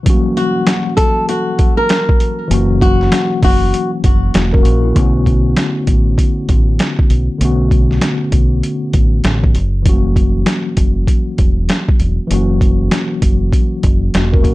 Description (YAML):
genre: hip hop, boom-bap hip-hop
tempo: 98 BPM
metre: 4/4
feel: swing 61% on 16ths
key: B minor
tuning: A4 = 440 Hz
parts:
  - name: mellow tine electric piano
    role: accompaniment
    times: 0.0-14.5 s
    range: D3 to A#4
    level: -18 LUFS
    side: left 2 dB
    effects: medium stereo tremolo, cassette tape
  - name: boom bap sampler-style drum kit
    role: drums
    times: 0.1-14.5 s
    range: hi-hat, kick drum, snare drum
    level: -13 LUFS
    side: equal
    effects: none
  - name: flamenco guitar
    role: melody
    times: 0.4-3.9 s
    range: F#4 to A#4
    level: -17 LUFS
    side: left 1 dB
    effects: digital delay
  - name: deep dub fingered electric bass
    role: bass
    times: 2.5-14.5 s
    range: E1 to B1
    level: -16 LUFS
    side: equal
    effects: none
room: light reverb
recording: dark, warm production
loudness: -11 LUFS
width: side -18 dB against mid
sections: 0.0-5.0 A section; 5.0-14.5 B section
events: break 0.0-2.5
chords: 0.0 F#7; 5.0 Bm7; 9.6 F#7